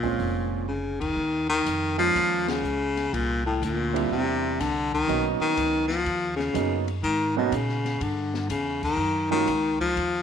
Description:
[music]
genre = jazz, small-group swing and bop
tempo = 123 BPM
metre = 4/4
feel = swing 67% on 8ths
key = Eb minor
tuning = A4 = 444 Hz
[part]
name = breathy baritone saxophone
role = melody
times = 0.0-10.2 s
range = A2 to F3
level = -24 LUFS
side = left 3 dB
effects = none
[part]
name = warm baby grand piano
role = accompaniment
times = 0.0-9.5 s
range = F3 to F4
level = -28 LUFS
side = right 13 dB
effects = none
[part]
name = upright bass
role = bass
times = 0.0-10.2 s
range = F1 to Bb2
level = -32 LUFS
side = right 1 dB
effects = none
[part]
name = open jazz drum kit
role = drums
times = 0.0-10.1 s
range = crash cymbal, hi-hat, kick drum, ride cymbal, snare drum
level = -38 LUFS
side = left 5 dB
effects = none
[sound]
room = wet plate reverb, RT60 1.1 s, small room ambience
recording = 1960s-style stereo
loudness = -23 LUFS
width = side -8 dB against mid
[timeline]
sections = 0.0-1.2 A section; 1.2-10.2 B section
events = drum fill 0.7-1.2; band accent 0.9, 2.4, 8.7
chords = 0.0 Bbm7; 1.2 Eb9sus4; 3.1 C9; 5.1 Bmaj9; 7.0 Abm11; 8.0 G5; 9.0 Gbmaj7(no3)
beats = 0.19 0.68 | 1.17 1.66 2.15 2.63 | 3.12 3.61 4.10 4.59 | 5.08 5.57 6.06 6.54 | 7.03 7.52 8.01 8.50 | 8.99 9.47 9.96

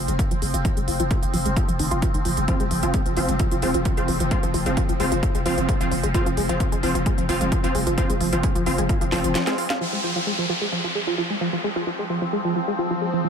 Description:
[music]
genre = driving peak-time techno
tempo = 131 BPM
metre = 4/4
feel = straight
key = F minor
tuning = A4 = 440 Hz
[part]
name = growling 808-style bass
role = bass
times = 0.0-9.3 s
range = F1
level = -27 LUFS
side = equal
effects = overdrive, sidechain pumping, low-pass filter
[part]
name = swarming drone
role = drone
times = 0.0-13.3 s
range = F3 to C4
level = -29 LUFS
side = left 1 dB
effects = built-in reverb, phaser, sidechain pumping
[part]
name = tight sequenced synth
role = riff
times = 0.1-13.3 s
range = Eb3 to F4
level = -26 LUFS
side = equal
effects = chorus, phaser, tube saturation, sidechain pumping, ping-pong delay
[part]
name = techno drum kit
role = drums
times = 0.1-9.9 s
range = crash cymbal, hi-hat, snare drum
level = -30 LUFS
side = right 2 dB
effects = low-pass filter on hats, low-pass filter on cymbals, low-pass filter on snare, low-pass filter on room
[part]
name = electronic kick drum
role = drums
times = 0.2-9.0 s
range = none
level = -24 LUFS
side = equal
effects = none
[part]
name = rave stab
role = stabs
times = 2.5-9.6 s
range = F3 to F4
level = -26 LUFS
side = right 1 dB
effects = chorus, built-in reverb, sidechain pumping, digital delay
[part]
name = downlifter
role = sound effects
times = 9.8-13.3 s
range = none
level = -28 LUFS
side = equal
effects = none
[sound]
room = light reverb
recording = none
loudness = -20 LUFS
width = side -7 dB against mid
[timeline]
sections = 0.0-9.8 A section; 9.8-13.3 B section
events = filter sweep on synth arpeggio sound 0.0-9.8, 9.8-13.3; drum fill 9.1-9.8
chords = 0.0 F5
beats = 0.19 | 0.65 1.11 1.56 2.02 | 2.48 2.94 3.40 3.85 | 4.31 4.77 5.23 5.69 | 6.14 6.60 7.06 7.52 | 7.98 8.44 8.89 9.35 | 9.81 10.27 10.72 11.18 | 11.64 12.10 12.56 13.02

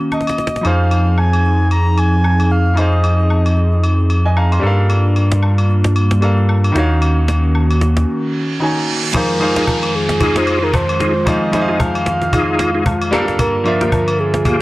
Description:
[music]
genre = amapiano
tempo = 113 BPM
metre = 4/4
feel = swing 58% on 16ths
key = unclear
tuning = A4 = 442 Hz
[part]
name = clear concert grand piano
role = accompaniment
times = 0.0-14.6 s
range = Eb3 to C6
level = -21 LUFS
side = equal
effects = none
[part]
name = hollow soft pad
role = sustained chords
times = 0.0-14.6 s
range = F2 to Ab4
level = -21 LUFS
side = equal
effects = chorus
[part]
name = cajon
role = drums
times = 0.0-14.6 s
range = none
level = -21 LUFS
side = equal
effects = none
[part]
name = breathy flute-like synth lead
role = melody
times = 0.1-3.8, 9.2-14.6 s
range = Ab4 to Bb5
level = -20 LUFS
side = right 1 dB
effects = chorus
[part]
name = woodblock and agogo bells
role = percussion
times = 0.1-14.6 s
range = none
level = -24 LUFS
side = left 1 dB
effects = none
[part]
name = sub bass with octave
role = bass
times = 0.6-8.1 s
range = Eb2 to G2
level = -13 LUFS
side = equal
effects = none
[part]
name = reverse cymbal and downlifter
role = sound effects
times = 8.3-13.4 s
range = none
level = -25 LUFS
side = right 2 dB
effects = none
[part]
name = bright tonewheel organ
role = stabs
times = 9.6-14.6 s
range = Bb3 to Ab4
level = -20 LUFS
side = left 1 dB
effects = chorus vibrato, fast rotary speaker, analog delay
[sound]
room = little or no reverb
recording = dry, gritty hardware recording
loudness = -13 LUFS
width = side -19 dB against mid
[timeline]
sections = 0.0-9.1 A section; 9.1-14.6 B section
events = drum fill 0.1-0.6; break 8.1-9.1; reverse cymbal 8.3-9.1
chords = 0.0 Ebm7; 0.6 Fm7; 4.6 Gm7; 6.8 Ebm7; 9.1 Fm7; 13.1 Gm7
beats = 0.12 | 0.65 1.18 1.71 2.24 | 2.77 3.30 3.83 4.37 | 4.90 5.43 5.96 6.49 | 7.02 7.55 8.08 8.61 | 9.14 9.67 10.21 10.74 | 11.27 11.80 12.33 12.86 | 13.39 13.92 14.45

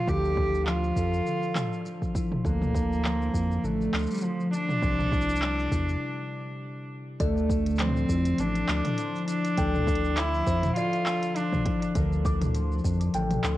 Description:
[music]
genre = folktronica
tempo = 101 BPM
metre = 4/4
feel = swing 56% on 16ths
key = D minor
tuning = A4 = 442 Hz
[part]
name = warm cello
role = melody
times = 0.0-11.8 s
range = F3 to G4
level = -29 LUFS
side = right 1 dB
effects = tape echo
[part]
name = concert harp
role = arpeggios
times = 0.0-13.6 s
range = C3 to Bb4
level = -30 LUFS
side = left 3 dB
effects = cassette tape, tape echo
[part]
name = round analog bass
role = bass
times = 0.1-13.6 s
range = A1 to F2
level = -29 LUFS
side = equal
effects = none
[part]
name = electronic kick drum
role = drums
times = 0.1-13.0 s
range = none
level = -30 LUFS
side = equal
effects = overdrive, cassette tape
[part]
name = organic electronic drum kit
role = drums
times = 0.1-13.6 s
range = handclaps, hi-hat, shaker, toms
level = -33 LUFS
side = right 1 dB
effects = overdrive, cassette tape
[part]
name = music box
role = second line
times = 7.2-13.4 s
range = C5 to D6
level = -38 LUFS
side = left 1 dB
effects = cassette tape, analog delay
[sound]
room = light reverb, studio ambience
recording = home recording on cassette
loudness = -24 LUFS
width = side -15 dB against mid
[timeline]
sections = 0.0-7.2 A section; 7.2-13.6 B section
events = break 6.0-7.2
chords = 0.0 Dmadd9; 2.4 Bbadd9/D; 4.8 Cadd9; 7.2 Dmadd9; 12.0 Bb/D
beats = | 0.07 0.67 1.26 1.85 | 2.45 3.04 3.64 4.23 | 4.83 5.42 6.01 6.61 | 7.20 7.80 8.39 8.98 | 9.58 10.17 10.77 11.36 | 11.95 12.55 13.14

